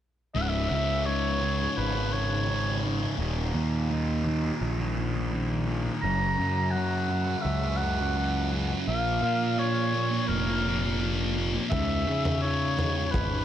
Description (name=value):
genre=psychedelic rock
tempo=84 BPM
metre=4/4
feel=straight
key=unclear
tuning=A4 = 440 Hz
part: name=warm oboe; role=melody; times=0.3-13.4 s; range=A#4 to A#5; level=-30 LUFS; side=equal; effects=tape echo
part: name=thick fuzz guitar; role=riff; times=0.3-13.4 s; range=C#2 to A#3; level=-29 LUFS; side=equal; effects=distortion, phaser
part: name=fuzz picked electric bass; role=bass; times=0.4-13.4 s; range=C#1 to C#3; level=-29 LUFS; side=equal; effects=overdrive
part: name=crunchy breakbeat drum kit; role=drums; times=11.7-13.3 s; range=kick drum, toms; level=-30 LUFS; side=equal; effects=none
room=light reverb, studio reverb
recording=echo-heavy mix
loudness=-25 LUFS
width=side -10 dB against mid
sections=0.4-13.4 A section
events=none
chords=0.4 C#5; 3.2 D#5; 6.0 F#; 8.9 A#m; 11.7 C#m